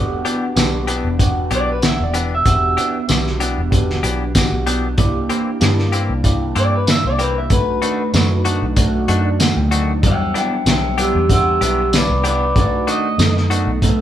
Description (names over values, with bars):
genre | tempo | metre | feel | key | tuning
straight-eighth soul blues | 95 BPM | 4/4 | swing 54% on 16ths | E minor | A4 = 440 Hz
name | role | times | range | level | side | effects
electric guitar through a small old amp | melody | 0.0-14.0 s | G4 to G5 | -20 LUFS | equal | none
overdriven tine electric piano | accompaniment | 0.0-14.0 s | F#3 to G5 | -22 LUFS | right 2 dB | phaser
vintage muted fingered electric bass | bass | 0.0-14.0 s | E1 to G2 | -20 LUFS | equal | none
direct-recorded clean electric guitar | stabs | 0.2-13.7 s | D#3 to G4 | -24 LUFS | left 4 dB | none
cloth-damped thuddy drum kit | drums | 0.3-14.0 s | hi-hat, kick drum, snare drum, tambourine | -18 LUFS | equal | none
room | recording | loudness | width
moderate stone room reverb, RT60 1.0 s | band playing live in one room | -14 LUFS | side -11 dB against mid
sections
0.0-14.0 A section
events
clean electric guitar solo 0.0-14.0; tine electric piano fill 8.8-10.0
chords
0.0 Em7; 5.0 C7; 7.5 B7#9; 10.0 Em7; 12.6 B7#9